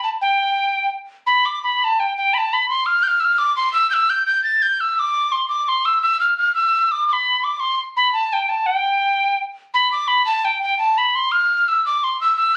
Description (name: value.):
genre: celtic folk.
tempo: 114 BPM (dotted quarters).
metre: 6/8.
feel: straight.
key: G mixolydian.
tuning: A4 = 440 Hz.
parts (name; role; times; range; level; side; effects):
mellow tin whistle; solo; 0.0-12.6 s; G5 to A6; -18 LUFS; equal; none.
room: moderate studio ambience, RT60 0.5 s.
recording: recorded on a phone in the room, studio reverb, compression.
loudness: -19 LUFS.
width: mono.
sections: 0.0-1.3 A section; 1.3-9.7 B section; 9.7-12.6 B section.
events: none.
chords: none.